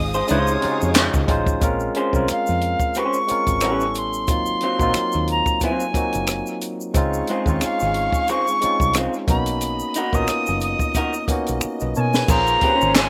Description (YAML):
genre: R&B, neo-soul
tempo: 90 BPM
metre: 4/4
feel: swing 55% on 16ths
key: Db major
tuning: A4 = 440 Hz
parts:
  - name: reedy soprano recorder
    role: melody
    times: 0.0-13.1 s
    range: Db5 to Eb6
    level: -24 LUFS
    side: equal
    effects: none
  - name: barky tine electric piano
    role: accompaniment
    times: 0.0-13.1 s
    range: Db3 to Eb5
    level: -27 LUFS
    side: equal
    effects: overdrive, slapback echo
  - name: warm studio string section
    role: sustained chords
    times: 0.0-1.6, 6.9-13.1 s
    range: Db4 to Eb6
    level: -36 LUFS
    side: equal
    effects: none
  - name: deep dub fingered electric bass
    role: bass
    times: 0.0-13.1 s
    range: Gb1 to Cb3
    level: -28 LUFS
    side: equal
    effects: none
  - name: electric guitar through a small old amp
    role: second line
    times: 0.1-12.9 s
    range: Gb3 to C5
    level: -26 LUFS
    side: equal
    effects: none
  - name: egg shaker and finger snaps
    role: percussion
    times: 0.1-13.1 s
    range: none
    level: -33 LUFS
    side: equal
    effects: none
  - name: warm horn section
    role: stabs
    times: 0.3-1.3, 12.3-13.1 s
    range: Ab2 to F4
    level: -31 LUFS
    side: equal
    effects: none
  - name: compact cocktail drum kit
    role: drums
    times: 0.3-13.1 s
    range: crash cymbal, handclaps, hi-hat, kick drum, rim click, snare drum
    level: -24 LUFS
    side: equal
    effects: none
room: little or no reverb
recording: recorded outdoors, with no room sound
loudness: -20 LUFS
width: mono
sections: 0.0-1.6 A section; 1.6-12.3 B section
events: drum fill 11.6-12.3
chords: 0.3 Dbmaj9; 1.6 Bbm9; 3.6 A9; 4.3 Ab13; 6.9 Dbmaj7; 9.3 Cbmaj7; 12.3 Bbm9